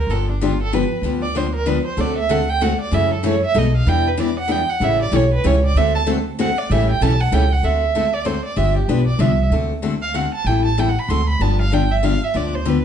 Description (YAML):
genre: acoustic string swing (jazz manouche)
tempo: 191 BPM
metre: 3/4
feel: swing 60% on 8ths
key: unclear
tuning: A4 = 440 Hz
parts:
  - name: rich violin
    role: melody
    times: 0.0-12.8 s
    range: D4 to C6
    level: -21 LUFS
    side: right 4 dB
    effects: none
  - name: picked steel-string acoustic guitar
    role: accompaniment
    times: 0.1-12.8 s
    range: B2 to A4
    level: -22 LUFS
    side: left 5 dB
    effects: none
  - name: upright bass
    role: bass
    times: 0.1-12.8 s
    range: G1 to F#2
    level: -20 LUFS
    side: equal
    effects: none
  - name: picked steel-string acoustic guitar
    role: accompaniment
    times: 2.0-7.4 s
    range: B2 to B4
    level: -26 LUFS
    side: right 4 dB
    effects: none
room: wet studio reverb, RT60 0.7 s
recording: heard from further back in the room, nothing above 10.4 kHz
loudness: -16 LUFS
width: side -8 dB against mid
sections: 0.0-7.6 A section; 7.6-12.8 A section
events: violin solo 0.0-12.8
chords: 0.1 G7; 2.0 D7; 2.9 F#m7; 3.5 Baug7; 3.9 Em7; 4.8 A7; 5.7 D7; 6.7 A7; 7.6 D7; 8.6 G7; 9.5 D7; 10.5 Am7; 11.1 D7; 11.4 G7